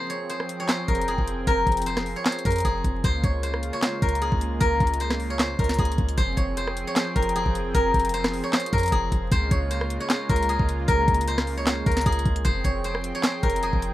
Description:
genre	hip hop, trap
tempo	153 BPM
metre	4/4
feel	half-time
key	F minor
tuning	A4 = 440 Hz
part	steel-string zither	melody	0.0-13.9 s	Ab4 to Db5	-26 LUFS	left 1 dB	none
part	warm analog pad	sustained chords	0.0-13.9 s	Db3 to G5	-32 LUFS	right 1 dB	chorus, tremolo
part	trap drum kit	drums	0.1-13.9 s	handclaps, hi-hat, kick drum, rim click, snare drum	-25 LUFS	equal	none
part	clean 808-style bass	bass	0.9-13.9 s	F1 to F2	-27 LUFS	equal	none
room	light reverb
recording	rough home demo mix, vinyl crackle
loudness	-21 LUFS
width	side -14 dB against mid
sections	0.0-6.2 A section; 6.2-13.9 B section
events	break 0.0-0.7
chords	0.0 Fmadd9; 3.0 Db6; 6.2 Fmadd9; 9.3 Db6; 12.5 Fmadd9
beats	0.30 0.69 1.08 | 1.47 1.86 2.26 2.65 | 3.04 3.43 3.83 4.22 | 4.61 5.00 5.39 5.79 | 6.18 6.57 6.96 7.36 | 7.75 8.14 8.53 8.92 | 9.31 9.71 10.10 10.49 | 10.88 11.28 11.67 12.06 | 12.45 12.85 13.24 13.63

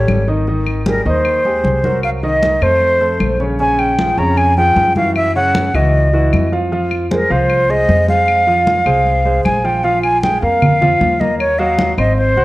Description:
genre	Afro-Cuban jazz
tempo	154 BPM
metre	4/4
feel	straight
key	unclear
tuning	A4 = 441 Hz
part	breathy concert flute	melody	0.0-12.4 s	Bb4 to Bb5	-14 LUFS	equal	none
part	warm grand piano	accompaniment	0.0-12.4 s	Db3 to Gb6	-19 LUFS	right 1 dB	none
part	upright bass	bass	0.0-12.4 s	Ab1 to Gb2	-18 LUFS	equal	none
part	claves	percussion	0.1-12.2 s	none	-28 LUFS	left 4 dB	none
part	congas	percussion	0.1-12.4 s	none	-21 LUFS	left 1 dB	none
room	moderate large studio reverb, RT60 1.2 s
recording	worn, warbling old tape, cassette tape, warbly pitch drift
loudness	-12 LUFS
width	side -18 dB against mid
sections	0.0-9.8 A section; 9.8-12.4 B section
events	none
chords	0.5 Abmaj9; 2.0 Cm7b5; 2.8 F; 3.6 Bbm7; 5.2 Gb5; 6.7 Fm; 9.8 Bb5; 11.4 Ebm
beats	0.08 | 0.47 0.86 1.25 1.65 | 2.04 2.43 2.82 3.21 | 3.60 3.99 4.38 4.77 | 5.16 5.55 5.94 6.33 | 6.72 7.11 7.50 7.89 | 8.28 8.67 9.06 9.45 | 9.84 10.23 10.62 11.01 | 11.40 11.79 12.18

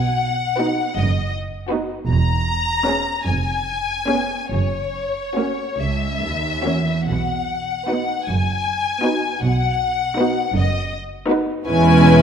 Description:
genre	classical, slow romantic movement for string orchestra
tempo	46-55 BPM (dotted quarters)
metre	6/8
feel	rubato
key	B major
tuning	A4 = 440 Hz
part	warm studio violin section	melody	0.0-12.2 s	C#5 to A#5	-22 LUFS	left 5 dB	none
part	warm studio double bass section	bass	0.0-12.2 s	E1 to C#2	-23 LUFS	right 3 dB	none
part	warm symphonic cello section	bass	0.0-12.2 s	C#2 to B2	-22 LUFS	right 2 dB	none
part	dark studio violin section	second line	0.6-12.2 s	E4 to C#5	-22 LUFS	left 1 dB	none
part	dark studio viola section	accompaniment	0.6-12.2 s	G#3 to D#4	-22 LUFS	right 2 dB	none
room	moderate scoring stage reverb, RT60 1.7 s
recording	none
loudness	-18 LUFS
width	side -8 dB against mid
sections	0.0-12.2 A section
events	none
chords	0.0 B; 2.1 C#m7/E; 3.3 C#7/E#; 4.5 F#; 7.1 B; 11.7 C#m7/E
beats	0.96 | 2.09 3.26 | 4.51 5.79 | 7.07 8.27 | 9.42 10.56 | 11.68

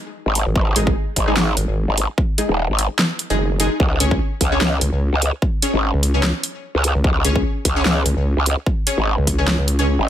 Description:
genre	heavy wobble dubstep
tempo	148 BPM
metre	4/4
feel	swing 54% on 16ths, half-time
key	unclear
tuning	A4 = 440 Hz
part	growl bass	bass	0.3-10.1 s	D#1 to C#2	-18 LUFS	equal	chorus, overdrive
part	big-room dance drum kit	drums	0.4-9.9 s	handclaps, hi-hat, snare drum	-20 LUFS	equal	overdrive
part	vowel-sweep wobble bass	bass	0.5-10.0 s	F#1 to C#2	-18 LUFS	equal	chorus, overdrive
part	electronic kick drum	drums	0.6-9.4 s	none	-20 LUFS	equal	overdrive
part	orchestra-hit-like synth stab	stabs	0.8-9.9 s	G#3 to C#5	-24 LUFS	left 1 dB	built-in reverb, ping-pong delay
room	digital ambience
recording	none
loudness	-16 LUFS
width	side -11 dB against mid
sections	0.0-10.1 A section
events	kick drops out 9.5-10.1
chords	0.0 G#5; 3.8 C#5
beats	0.15 | 0.56 0.96 1.37 1.77 | 2.18 2.58 2.99 3.39 | 3.80 4.21 4.61 5.02 | 5.42 5.83 6.23 6.64 | 7.04 7.45 7.85 8.26 | 8.66 9.07 9.47 9.88

